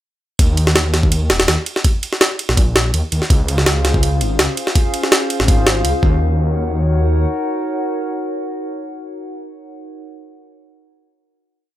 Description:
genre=drum and bass, jungle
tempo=165 BPM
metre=4/4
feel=swing 53% on 16ths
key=Eb dorian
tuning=A4 = 440 Hz
part: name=detuned saw bass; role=bass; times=0.4-7.3 s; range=Eb1 to Eb2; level=-17 LUFS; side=equal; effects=none
part: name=jungle sampler-style drum kit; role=drums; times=0.4-6.1 s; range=kick drum, ride cymbal, snare drum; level=-15 LUFS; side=equal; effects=none
part: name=warbly tape-like pad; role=sustained chords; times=3.4-9.9 s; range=Db4 to Gb5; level=-22 LUFS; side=left 1 dB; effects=chorus, built-in reverb
room=little or no reverb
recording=none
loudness=-14 LUFS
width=side -13 dB against mid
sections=0.4-6.2 drop; 6.2-9.1 final hit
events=drop 0.4-6.2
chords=0.4 Eb5; 3.3 Dbmaj7; 6.0 Ebm7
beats=| 0.39 0.76 1.12 1.48 | 1.85 2.21 2.57 2.94 | 3.30 3.66 4.03 4.39 | 4.75 5.12 5.48 5.85 | 6.21 6.57 6.94 7.30 | 7.66 8.03 8.39 8.76

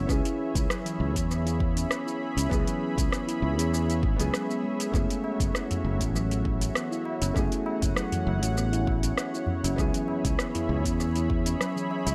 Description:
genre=organic downtempo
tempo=99 BPM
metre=4/4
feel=swing 53% on 16ths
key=F# minor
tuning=A4 = 438 Hz
part: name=felt-muted upright piano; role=accompaniment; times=0.0-12.1 s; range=A3 to G#4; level=-36 LUFS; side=equal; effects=sidechain pumping, dub echo
part: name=warm analog pad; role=sustained chords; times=0.0-12.1 s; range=F#4 to B5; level=-38 LUFS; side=equal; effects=chorus, sidechain pumping
part: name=steel tongue drum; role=arpeggios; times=0.0-11.9 s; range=E3 to E4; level=-35 LUFS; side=equal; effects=dub echo
part: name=sustaining fretless electric bass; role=bass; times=0.0-12.1 s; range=F#1 to E2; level=-30 LUFS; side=equal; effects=tube saturation
part: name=afro-pop drum kit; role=drums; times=0.1-12.1 s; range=hi-hat, rim click, shaker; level=-36 LUFS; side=equal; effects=overdrive, dub echo
part: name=electronic kick drum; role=drums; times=0.1-11.4 s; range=none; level=-32 LUFS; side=equal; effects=overdrive
part: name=tabla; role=percussion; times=5.2-12.1 s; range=none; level=-39 LUFS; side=equal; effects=dub echo
room=light reverb, digital ambience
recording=echo-heavy mix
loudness=-27 LUFS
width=mono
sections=0.0-12.1 A section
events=none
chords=0.1 C#m7; 4.9 F#m7; 9.8 C#m7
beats=| 0.09 0.69 1.30 1.91 | 2.51 3.12 3.72 4.33 | 4.94 5.54 6.15 6.75 | 7.36 7.97 8.57 9.18 | 9.78 10.39 11.00 11.60

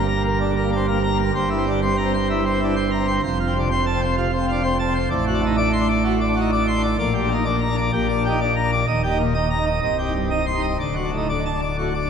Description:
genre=classical, organ toccata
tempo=127 BPM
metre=4/4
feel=straight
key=unclear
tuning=A4 = 440 Hz
part: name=pipe organ, plenum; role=solo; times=0.0-12.1 s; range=C1 to C6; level=-18 LUFS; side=equal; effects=none
room=wet church reverb, RT60 3.4 s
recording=minimal, uncompressed stereo recording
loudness=-18 LUFS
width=side -7 dB against mid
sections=0.0-12.1 A section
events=none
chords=0.0 Gm; 1.3 C7/G; 3.2 F; 5.1 D7/A; 7.0 Gm/Bb; 8.9 Eb; 9.8 Cm; 10.8 D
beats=0.40 0.87 | 1.34 1.82 2.29 2.76 | 3.23 3.70 4.16 4.63 | 5.10 5.57 6.05 6.52 | 6.99 7.46 7.93 8.40 | 8.87 9.35 9.82 10.31 | 10.80 11.29 11.78

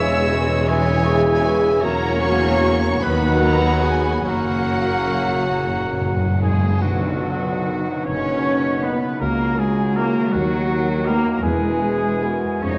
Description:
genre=classical, slow romantic movement for symphony orchestra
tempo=46-55 BPM (dotted quarters)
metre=6/8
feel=rubato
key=B major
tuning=A4 = 439 Hz
part: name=warm studio violin section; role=melody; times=0.0-12.5 s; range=A#4 to E6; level=-31 LUFS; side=equal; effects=none
part: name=dark clarinet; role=second line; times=0.0-12.8 s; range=F#4 to F#5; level=-30 LUFS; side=equal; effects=none
part: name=hollow flute section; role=second line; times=0.0-12.8 s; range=F#5 to C#6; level=-33 LUFS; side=equal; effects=none
part: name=rich studio violin section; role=second line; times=0.0-12.5 s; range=G#3 to B4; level=-34 LUFS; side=equal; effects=none
part: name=warm oboe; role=second line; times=0.0-12.8 s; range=F#4 to E5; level=-32 LUFS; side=equal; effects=none
part: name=mellow bassoon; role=accompaniment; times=0.0-12.8 s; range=B2 to F#3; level=-32 LUFS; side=equal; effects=none
part: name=rich studio viola section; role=accompaniment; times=0.0-12.5 s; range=E3 to G#4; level=-30 LUFS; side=equal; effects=none
part: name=dark trombone section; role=sustained chords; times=0.0-12.4 s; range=C#3 to B3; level=-33 LUFS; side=equal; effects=none
part: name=mellow French horn section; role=sustained chords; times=0.0-12.8 s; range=G#3 to G#4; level=-30 LUFS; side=equal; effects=none
part: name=concert harp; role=arpeggios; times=0.0-12.8 s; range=E2 to F#5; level=-36 LUFS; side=equal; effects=none
part: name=clear trumpet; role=stabs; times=0.0-12.8 s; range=F#4 to F#5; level=-30 LUFS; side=equal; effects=none
part: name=mellow tuba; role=bass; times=0.0-12.8 s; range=E1 to D#2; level=-29 LUFS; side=equal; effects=none
part: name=rich studio double bass section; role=bass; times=0.0-12.8 s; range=E1 to E#2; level=-30 LUFS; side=equal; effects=none
part: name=warm studio cello section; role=bass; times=0.0-12.8 s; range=D#2 to D#4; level=-27 LUFS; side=equal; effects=none
part: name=cymbal swell and tam-tam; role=percussion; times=4.2-9.9 s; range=none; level=-37 LUFS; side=equal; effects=none
part: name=timpani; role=percussion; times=4.3-6.8 s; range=F#2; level=-26 LUFS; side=equal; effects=none
room=wet recital hall reverb, RT60 1.8 s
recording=worn, warbling old tape, cassette tape, warbly pitch drift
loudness=-19 LUFS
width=mono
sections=0.0-6.8 A section; 6.8-12.8 B section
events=timpani fill 4.2-6.8; band accent 6.8-7.6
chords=0.0 C#m/E; 1.8 F#7/E; 3.0 B/D#; 4.2 F#; 6.8 B; 9.2 A#dim/C#; 10.3 B/D#; 11.4 E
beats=0.68 | 1.82 3.01 | 4.25 5.54 | 6.82 8.06 | 9.21 10.34 | 11.43 12.62

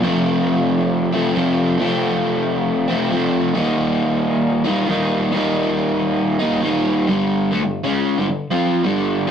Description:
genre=rock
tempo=136 BPM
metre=4/4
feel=straight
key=unclear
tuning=A4 = 440 Hz
part: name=crunchy overdriven guitar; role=solo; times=0.0-9.3 s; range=F2 to F4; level=-16 LUFS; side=equal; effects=none
room=wet studio reverb, RT60 0.5 s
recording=rough rehearsal-room recording, tube saturation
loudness=-16 LUFS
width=side -8 dB against mid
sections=0.0-7.1 A section; 7.1-9.3 B section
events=none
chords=0.0 F; 3.6 Eb; 7.1 G5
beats=| 0.03 0.47 0.91 1.35 | 1.79 2.24 2.68 3.12 | 3.56 4.00 4.44 4.88 | 5.32 5.76 6.20 6.64 | 7.08 7.52 7.96 8.40 | 8.84 9.28

